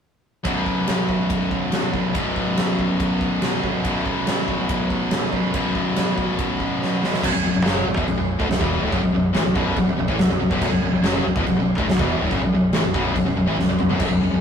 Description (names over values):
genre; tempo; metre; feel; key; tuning
heavy metal; 142 BPM; 4/4; straight; unclear; A4 = 435 Hz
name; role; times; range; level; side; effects
distorted electric guitar; riff; 0.4-14.4 s; B1 to F#3; -22 LUFS; left 4 dB; overdrive
heavy high-gain guitar; riff; 0.4-14.4 s; B1 to F#3; -24 LUFS; right 4 dB; distortion
big rock drum kit; drums; 0.5-14.1 s; china cymbal, crash cymbal, kick drum, ride cymbal, snare drum, toms; -24 LUFS; right 1 dB; none
growling fingered electric bass; bass; 7.2-14.4 s; B0 to A1; -27 LUFS; equal; overdrive
room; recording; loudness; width
moderate stone room reverb, RT60 1.3 s; rough rehearsal-room recording; -18 LUFS; side -7 dB against mid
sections
0.4-7.2 A section; 7.2-14.4 B section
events
drum fill 6.8-7.2, 13.6-14.0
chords
0.4 B5; 7.2 Bm